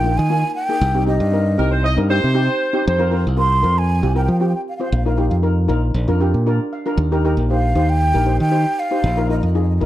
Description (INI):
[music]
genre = calypso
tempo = 117 BPM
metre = 4/4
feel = straight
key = Eb major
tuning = A4 = 440 Hz
[part]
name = mellow hollow concert flute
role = melody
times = 0.0-9.9 s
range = Eb5 to C6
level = -21 LUFS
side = right 1 dB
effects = slapback echo, plate reverb
[part]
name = steel pan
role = accompaniment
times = 0.0-9.9 s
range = Bb3 to F5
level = -22 LUFS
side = left 1 dB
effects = none
[part]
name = modern bright fingered electric bass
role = bass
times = 0.0-9.9 s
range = Bb1 to F3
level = -17 LUFS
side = equal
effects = none
[part]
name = warm horn section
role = second line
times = 1.6-3.2 s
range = Bb4 to Eb5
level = -20 LUFS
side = right 1 dB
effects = none
[sound]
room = moderate studio reverb, RT60 0.5 s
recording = dark, warm production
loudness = -15 LUFS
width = side -13 dB against mid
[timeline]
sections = 0.0-9.9 A section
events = steel pan fill 6.0-7.0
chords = 0.0 Ebsus2; 0.8 Cm; 2.9 Fsus4; 4.9 Bbsus4; 6.0 Bb; 7.0 Eb; 9.0 Bbsus4